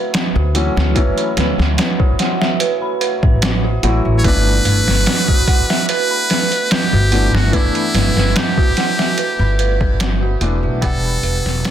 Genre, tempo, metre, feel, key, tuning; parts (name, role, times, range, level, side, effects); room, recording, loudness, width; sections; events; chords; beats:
trip hop; 73 BPM; 4/4; swing 53% on 16ths; A4 = 441 Hz
felt-muted upright piano; accompaniment; 0.0-11.7 s; E3 to F#5; -23 LUFS; left 3 dB; tremolo, tape echo
dark detuned synth bell; arpeggios; 0.0-11.7 s; F#4 to B5; -22 LUFS; right 5 dB; chorus, phaser, ping-pong delay
trip hop sampler-style drum kit; drums; 0.1-11.7 s; hi-hat, kick drum, snare drum; -17 LUFS; equal; overdrive
upright bass; bass; 0.4-11.6 s; E1 to D2; -16 LUFS; equal
trumpet with metal mute; melody; 4.2-11.7 s; E4 to C#5; -19 LUFS; equal; tape echo
studio ambience; dense, heavily limited modern master; -13 LUFS; side -10 dB against mid
0.0-11.7 A section
fade-out 8.6-11.7
0.0 Bm7; 4.2 G69; 10.8 Em7
0.14 | 0.96 1.78 2.60 3.42 | 4.24 5.07 5.89 6.71 | 7.53 8.35 9.18 10.00 | 10.82 11.64